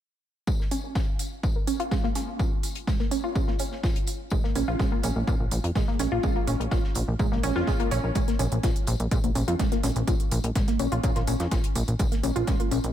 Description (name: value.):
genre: melodic techno.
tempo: 125 BPM.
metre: 4/4.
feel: straight.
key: Bb minor.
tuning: A4 = 440 Hz.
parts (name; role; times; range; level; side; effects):
analog pluck; arpeggios; 0.5-12.8 s; Ab3 to F4; -29 LUFS; equal; chorus, sidechain pumping, tape echo.
deep reggae drum kit; drums; 0.5-12.8 s; hi-hat, snare drum, tambourine; -42 LUFS; left 5 dB; high-pass filter on hats, high-pass filter on snare, high-pass filter on perc, high-pass filter on room.
electronic kick drum; drums; 0.5-12.6 s; none; -26 LUFS; equal; none.
electronic hi-hat; drums; 0.7-12.9 s; none; -36 LUFS; right 4 dB; sidechain pumping on hats.
plucky analog bass; bass; 4.3-12.9 s; Bb1 to Bb2; -28 LUFS; equal; sidechain pumping.
room: light reverb, small room ambience.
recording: none.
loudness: -23 LUFS.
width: side -11 dB against mid.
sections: 0.5-8.2 A section; 8.2-12.9 B section.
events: filter sweep on synth pluck 0.5-8.2.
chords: 0.5 Bbm7.